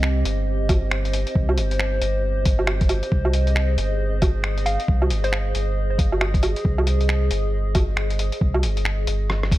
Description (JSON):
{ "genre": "future garage", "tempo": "136 BPM", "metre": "4/4", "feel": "swing 61% on 16ths", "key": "unclear", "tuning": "A4 = 441 Hz", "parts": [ { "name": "warbly tape-like pad", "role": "sustained chords", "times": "0.0-9.6 s", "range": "C4 to Eb5", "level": "-28 LUFS", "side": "equal", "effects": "chorus, built-in reverb, sidechain pumping" }, { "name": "warm sub bass", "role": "bass", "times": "0.0-9.6 s", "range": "G1 to C2", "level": "-22 LUFS", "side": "equal", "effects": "tube saturation, sidechain pumping" }, { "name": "lo-fi sampler-style drum kit", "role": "drums", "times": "0.0-9.6 s", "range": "finger snaps, hi-hat, rim click, woodblock", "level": "-26 LUFS", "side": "right 1 dB", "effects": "studio reverb" }, { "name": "electronic kick drum", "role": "drums", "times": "0.7-9.6 s", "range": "none", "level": "-20 LUFS", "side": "equal", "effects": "studio reverb" }, { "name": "hollow square pluck", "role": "melody", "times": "4.7-5.5 s", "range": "C5 to F5", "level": "-30 LUFS", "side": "equal", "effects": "chorus, cassette tape, tape echo" } ], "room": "digital ambience", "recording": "none", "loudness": "-19 LUFS", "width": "side -16 dB against mid", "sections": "0.0-9.6 A section", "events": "drum fill 9.3", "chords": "0.0 Cm; 3.1 Ab", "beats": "0.03 0.47 0.92 | 1.36 1.80 2.24 2.68 | 3.12 3.56 4.00 4.44 | 4.89 5.33 5.77 6.21 | 6.65 7.09 7.53 7.97 | 8.41 8.86 9.30" }